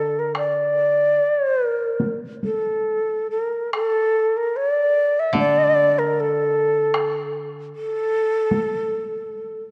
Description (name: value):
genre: japanese traditional, Japanese chamber music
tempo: 66-79 BPM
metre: 4/4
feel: rubato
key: unclear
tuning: A4 = 438 Hz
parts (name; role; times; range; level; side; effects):
- mellow shakuhachi; melody; 0.0-9.6 s; A4 to E5; -22 LUFS; equal; none
- koto; accompaniment; 0.0-7.7 s; D3; -31 LUFS; equal; none
- taiko ensemble; percussion; 0.3-8.7 s; none; -30 LUFS; equal; none
room: moderate concert hall reverb, RT60 2.4 s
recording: worn, warbling old tape, cassette tape, warbly pitch drift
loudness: -21 LUFS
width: mono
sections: 0.0-3.7 A section; 3.7-9.7 B section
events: none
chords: none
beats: | 0.36 1.18 2.00 2.87 | 3.73 4.55 5.36 6.15 | 6.94 7.72 8.50 9.28